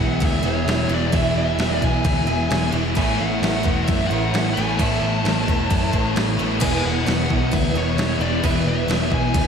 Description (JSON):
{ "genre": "rock, shoegaze and dream pop", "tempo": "131 BPM", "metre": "4/4", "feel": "straight", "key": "unclear", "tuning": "A4 = 440 Hz", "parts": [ { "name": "fuzz lead guitar", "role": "melody", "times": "0.0-9.5 s", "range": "C#5 to A5", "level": "-27 LUFS", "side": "left 1 dB", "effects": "distortion, diffuse ambient delay" }, { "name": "picked twelve-string acoustic guitar", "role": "arpeggios", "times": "0.0-9.5 s", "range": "E4 to C#5", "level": "-30 LUFS", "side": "right 6 dB", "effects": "ensemble chorus, diffuse ambient delay" }, { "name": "direct-recorded clean electric guitar", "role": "riff", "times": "0.0-9.5 s", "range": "E3 to E5", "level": "-28 LUFS", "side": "right 9 dB", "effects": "reverse reverb" }, { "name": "overdriven electric guitar", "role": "riff", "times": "0.0-9.5 s", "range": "E2 to A3", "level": "-26 LUFS", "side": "equal", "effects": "none" }, { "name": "thick fuzz guitar", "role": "riff", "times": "0.0-9.5 s", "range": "E2 to A3", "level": "-25 LUFS", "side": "left 8 dB", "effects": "distortion, wide subtle chorus" }, { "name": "vintage muted picked electric bass", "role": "bass", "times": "0.0-9.5 s", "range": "E1 to F#2", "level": "-24 LUFS", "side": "equal", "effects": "none" }, { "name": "clean 12-bit digital drum machine", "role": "drums", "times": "0.2-9.4 s", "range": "crash cymbal, kick drum, snare drum", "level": "-24 LUFS", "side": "equal", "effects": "overdrive" } ], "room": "moderate lush hall reverb, RT60 1.6 s, digital ambience", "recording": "dreamy mix soaked in reverb", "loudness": "-18 LUFS", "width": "side -7 dB against mid", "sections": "0.0-6.6 A section; 6.6-9.5 A section", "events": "none", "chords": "0.0 E; 3.0 Aadd9; 6.6 E", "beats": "0.21 0.67 | 1.13 1.58 2.04 2.50 | 2.96 3.41 3.87 4.33 | 4.79 5.24 5.70 6.16 | 6.61 7.07 7.53 7.98 | 8.44 8.89 9.35" }